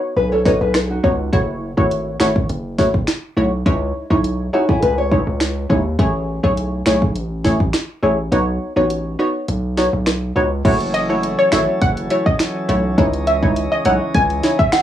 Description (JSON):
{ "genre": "dancehall", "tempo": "103 BPM", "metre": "4/4", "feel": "straight", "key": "unclear", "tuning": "A4 = 440 Hz", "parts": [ { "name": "punchy chord stab", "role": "accompaniment", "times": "0.0-14.6 s", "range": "G#3 to C#5", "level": "-18 LUFS", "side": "equal", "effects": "chorus" }, { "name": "nylon-string guitar", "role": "arpeggios", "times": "0.2-5.8 s", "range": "D#4 to D#5", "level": "-19 LUFS", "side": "left 2 dB", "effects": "none" }, { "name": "hard-hitting 808-style bass", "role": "bass", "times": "0.2-14.4 s", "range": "F#1 to D#2", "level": "-22 LUFS", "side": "equal", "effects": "none" }, { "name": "afro-pop drum kit", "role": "drums", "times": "0.5-14.8 s", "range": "crash cymbal, finger snaps, hi-hat, kick drum, rim click, snare drum", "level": "-19 LUFS", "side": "equal", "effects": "overdrive, cassette tape" }, { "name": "pipe organ, sparkling flutes", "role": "sustained chords", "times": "10.6-14.8 s", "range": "C#3 to D#5", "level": "-23 LUFS", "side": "equal", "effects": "sidechain pumping" }, { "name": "analog pluck", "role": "melody", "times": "10.9-14.7 s", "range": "C#5 to G#5", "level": "-19 LUFS", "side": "equal", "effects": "chorus, cassette tape, analog delay" }, { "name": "synth chime", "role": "second line", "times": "14.7-14.8 s", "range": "F#5", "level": "-14 LUFS", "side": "right 3 dB", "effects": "ensemble chorus" } ], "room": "little or no reverb", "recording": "home recording on cassette, small room ambience", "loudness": "-15 LUFS", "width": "side -11 dB against mid", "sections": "0.0-10.7 A section; 10.7-14.8 B section", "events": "break 0.0-1.3; kick muted 8.3-10.7", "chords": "0.0 Badd9; 1.3 F#m7; 3.7 C#madd9; 6.0 Amaj7; 8.3 Badd9; 10.7 F#m7; 13.0 C#madd9" }